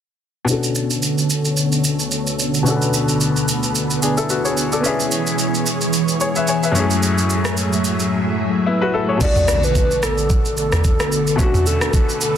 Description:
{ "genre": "amapiano", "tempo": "110 BPM", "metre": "4/4", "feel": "swing 55% on 16ths", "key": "B dorian", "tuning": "A4 = 440 Hz", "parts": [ { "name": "clear grand piano", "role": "accompaniment", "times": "0.4-12.4 s", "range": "F#2 to G#5", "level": "-21 LUFS", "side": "left 3 dB", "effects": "low-pass filter" }, { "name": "string machine, cellos", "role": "sustained chords", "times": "0.5-12.4 s", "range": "D3 to E5", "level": "-20 LUFS", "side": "right 1 dB", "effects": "phaser, ensemble chorus, sidechain pumping, low-pass filter" }, { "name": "smooth R&B drum kit", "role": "drums", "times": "0.5-12.3 s", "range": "crash cymbal, kick drum, rim click, shaker, toms", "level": "-20 LUFS", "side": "right 1 dB", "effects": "soft clipping on snare" }, { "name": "hollow clarinet-like synth lead", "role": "melody", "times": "9.2-12.4 s", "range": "F#4 to D5", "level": "-21 LUFS", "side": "equal", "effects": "chorus, digital delay" }, { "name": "impact", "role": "sound effects", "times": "9.2-11.4 s", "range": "none", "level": "-25 LUFS", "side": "right 1 dB", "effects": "none" } ], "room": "light reverb", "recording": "dense, heavily limited modern master", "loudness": "-16 LUFS", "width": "side -9 dB against mid", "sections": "0.5-9.2 A section; 9.2-12.4 B section", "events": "filter sweep 0.5-9.2; impact 9.2-11.4", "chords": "0.5 Bm9; 4.8 C#m7; 6.8 F#m9; 9.2 Bm9" }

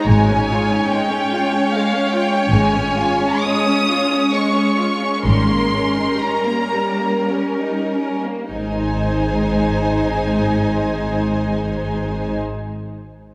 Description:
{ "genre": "classical, slow romantic movement for string orchestra", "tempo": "46-75 BPM", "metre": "3/4", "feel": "rubato", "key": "Ab major", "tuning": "A4 = 444 Hz", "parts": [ { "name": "warm symphonic violin section", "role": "melody", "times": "0.0-12.4 s", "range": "F5 to Eb6", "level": "-25 LUFS", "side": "equal", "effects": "none" }, { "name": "clear symphonic violin section", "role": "second line", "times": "0.0-12.4 s", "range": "G3 to Db5", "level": "-24 LUFS", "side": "equal", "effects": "none" }, { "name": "rich symphonic viola section", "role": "accompaniment", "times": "0.0-12.4 s", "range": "G3 to Eb4", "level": "-24 LUFS", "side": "equal", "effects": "none" }, { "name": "rich studio double bass section", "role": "bass", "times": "0.1-12.4 s", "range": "Ab1", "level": "-25 LUFS", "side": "equal", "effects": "none" }, { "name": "warm symphonic cello section", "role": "bass", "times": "0.1-12.4 s", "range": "Ab2", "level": "-27 LUFS", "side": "equal", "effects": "none" } ], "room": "wet church reverb, RT60 2.4 s", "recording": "none", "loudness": "-19 LUFS", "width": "mono", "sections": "0.0-8.5 A section; 8.5-11.9 B section", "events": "slowing down 1.3-8.5", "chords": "0.1 Db/Ab; 5.2 Eb7/Ab (rootless); 8.5 Ab" }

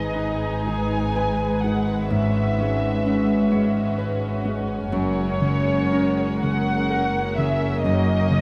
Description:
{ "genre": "cinematic, emotional film score for orchestra", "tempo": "37-43 BPM (dotted quarters)", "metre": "6/8", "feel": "rubato", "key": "unclear", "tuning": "A4 = 445 Hz", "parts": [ { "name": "muted studio violin section", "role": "melody", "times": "0.0-8.4 s", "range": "C#5 to G#5", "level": "-30 LUFS", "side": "equal", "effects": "none" }, { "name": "muted studio violin section", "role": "second line", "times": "0.0-8.4 s", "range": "D#4 to B4", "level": "-33 LUFS", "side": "equal", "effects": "none" }, { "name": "muted studio viola section", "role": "accompaniment", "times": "0.0-8.4 s", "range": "G#3 to D#4", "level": "-31 LUFS", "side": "equal", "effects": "none" }, { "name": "warm concert grand piano", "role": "accompaniment", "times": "0.0-8.4 s", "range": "F#2 to B4", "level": "-27 LUFS", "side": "equal", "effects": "none" }, { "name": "concert harp", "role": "arpeggios", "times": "0.0-8.4 s", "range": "F#2 to D#5", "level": "-34 LUFS", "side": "equal", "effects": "none" }, { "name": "muted studio cello section", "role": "bass", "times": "0.0-8.4 s", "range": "F#2 to G#2", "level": "-30 LUFS", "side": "equal", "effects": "none" }, { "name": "muted studio double bass section", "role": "bass", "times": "0.0-8.4 s", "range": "F#1 to G#1", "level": "-31 LUFS", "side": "equal", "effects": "none" } ], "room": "light reverb", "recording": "close, detailed microphones", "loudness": "-22 LUFS", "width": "mono", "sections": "0.0-8.4 A section", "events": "none", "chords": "0.0 G#m; 2.1 C#7sus4/G#; 4.9 F#add9; 7.9 D#m7/F#" }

